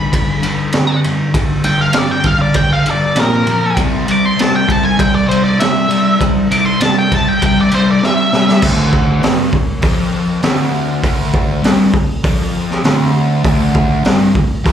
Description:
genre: garage rock duo or trio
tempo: 99 BPM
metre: 4/4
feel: straight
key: unclear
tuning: A4 = 438 Hz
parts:
  - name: octave-fuzz lead guitar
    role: melody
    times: 0.0-8.6 s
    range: Bb4 to D6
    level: -16 LUFS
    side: equal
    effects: distortion, slapback echo
  - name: fuzz guitar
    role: riff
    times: 0.0-14.7 s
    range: D2 to C4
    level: -14 LUFS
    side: equal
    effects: distortion
  - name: raw garage drum kit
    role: drums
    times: 0.1-14.7 s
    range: crash cymbal, hi-hat, kick drum, ride cymbal, snare drum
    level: -16 LUFS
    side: equal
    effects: none
room: light reverb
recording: live gig heard through the venue's PA, club reverb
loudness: -11 LUFS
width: side -9 dB against mid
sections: 0.0-8.6 A section; 8.6-14.7 B section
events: drum fill 8.0-8.6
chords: 0.0 G; 3.2 Bb5; 3.8 C; 8.6 Dmadd11

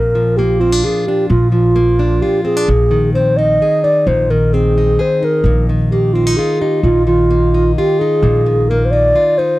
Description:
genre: acoustic folk duo or small band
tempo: 130 BPM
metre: 3/4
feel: straight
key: unclear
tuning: A4 = 440 Hz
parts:
  - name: mellow hollow wooden-headed alto flute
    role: melody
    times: 0.0-9.6 s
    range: F4 to Eb5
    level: -14 LUFS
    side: right 1 dB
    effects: none
  - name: fingerpicked plugged-in steel-string acoustic guitar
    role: accompaniment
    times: 0.0-9.6 s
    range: Bb2 to Ab4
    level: -18 LUFS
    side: left 2 dB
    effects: none
  - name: upright bass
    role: bass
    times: 0.0-9.1 s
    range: Bb1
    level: -15 LUFS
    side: equal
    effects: none
room: little or no reverb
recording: dry, close 1970s-style studio recording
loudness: -11 LUFS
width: side -17 dB against mid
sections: 0.0-9.6 A section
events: none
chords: 0.0 Bb; 2.7 Ab/Bb; 5.4 Ebsus2/Bb

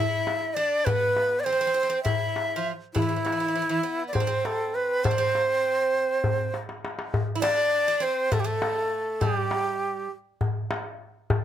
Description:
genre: Turkish makam ensemble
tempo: 201 BPM (eighths)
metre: 7/8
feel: straight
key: C makam rast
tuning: A4 = 440 Hz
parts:
  - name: breathy bright ney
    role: melody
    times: 0.0-10.1 s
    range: E4 to E5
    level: -24 LUFS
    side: equal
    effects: none
  - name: Greek bouzouki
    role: second line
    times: 0.0-10.1 s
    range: E3 to E4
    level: -32 LUFS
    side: right 4 dB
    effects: none
  - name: darbuka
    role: percussion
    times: 0.3-11.4 s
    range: none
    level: -28 LUFS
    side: left 2 dB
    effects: none
room: light reverb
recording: none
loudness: -23 LUFS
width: side -10 dB against mid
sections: 0.0-7.1 A section; 7.1-11.4 B section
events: drum fill 6.5-7.1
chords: none

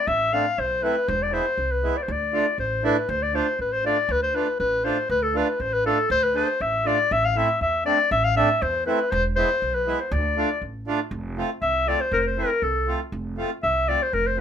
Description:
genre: klezmer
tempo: 120 BPM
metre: 2/4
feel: straight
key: D dorian sharp4, F major from 11.1 s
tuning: A4 = 440 Hz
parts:
  - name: clear clarinet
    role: melody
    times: 0.0-14.4 s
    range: A4 to F5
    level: -22 LUFS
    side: left 2 dB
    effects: none
  - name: upright bass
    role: bass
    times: 0.1-14.4 s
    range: E1 to E2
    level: -29 LUFS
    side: right 1 dB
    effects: none
  - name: accordion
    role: accompaniment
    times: 0.3-14.4 s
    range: G#3 to G#4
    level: -26 LUFS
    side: right 4 dB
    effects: none
room: moderate small room reverb, RT60 0.5 s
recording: minimal, uncompressed stereo recording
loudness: -21 LUFS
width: side -8 dB against mid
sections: 0.0-3.1 A section; 3.1-11.1 A section; 11.1-14.4 B section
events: none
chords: 0.0 Am; 1.1 E; 2.1 Dm; 7.1 Am; 9.1 E; 10.1 Dm; 11.1 F

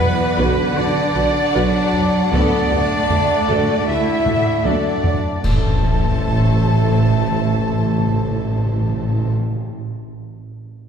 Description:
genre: cinematic, epic orchestral film score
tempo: 77 BPM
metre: 4/4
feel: straight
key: A dorian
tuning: A4 = 440 Hz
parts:
  - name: warm symphonic violin section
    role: melody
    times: 0.0-9.3 s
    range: B4 to A5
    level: -28 LUFS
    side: left 2 dB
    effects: none
  - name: hollow flute section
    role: second line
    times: 0.0-9.3 s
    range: B4 to A5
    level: -29 LUFS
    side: equal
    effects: none
  - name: warm symphonic violin section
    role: second line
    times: 0.0-9.3 s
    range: A4 to F#5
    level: -29 LUFS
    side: left 1 dB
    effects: none
  - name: warm studio viola section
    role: accompaniment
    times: 0.0-9.3 s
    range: E4 to B4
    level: -28 LUFS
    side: equal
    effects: none
  - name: mellow French horn section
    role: sustained chords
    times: 0.0-9.3 s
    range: A3 to E4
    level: -23 LUFS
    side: left 3 dB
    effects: none
  - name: dark trumpet section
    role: stabs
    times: 0.0-9.3 s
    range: A4 to E5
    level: -25 LUFS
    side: right 3 dB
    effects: none
  - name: mellow tuba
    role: bass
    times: 0.0-9.3 s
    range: A1 to D2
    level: -25 LUFS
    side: right 2 dB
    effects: none
  - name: warm symphonic cello section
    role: bass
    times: 0.0-9.3 s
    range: A2 to B3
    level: -25 LUFS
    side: right 3 dB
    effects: none
  - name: warm symphonic double bass section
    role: bass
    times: 0.0-9.3 s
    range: A1 to D2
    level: -23 LUFS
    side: right 1 dB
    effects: none
  - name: taiko ensemble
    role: drums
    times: 1.2-5.4 s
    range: none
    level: -24 LUFS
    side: equal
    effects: none
  - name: clash cymbals and concert bass drum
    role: percussion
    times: 5.4-7.0 s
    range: none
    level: -23 LUFS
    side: equal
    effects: none
  - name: timpani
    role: percussion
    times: 5.4-9.5 s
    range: A2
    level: -22 LUFS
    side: equal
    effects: none
  - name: sub drop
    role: sound effects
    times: 5.4-9.5 s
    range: none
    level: -28 LUFS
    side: left 1 dB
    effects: none
room: wet concert hall reverb, RT60 2.5 s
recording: heard from further back in the room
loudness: -15 LUFS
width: side -7 dB against mid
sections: 0.0-5.4 A section; 5.4-8.5 B section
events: drum fill 4.3-5.4; band accent 5.4-6.2; impact 5.4-8.5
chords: 0.0 Bm; 2.3 D; 5.4 Am

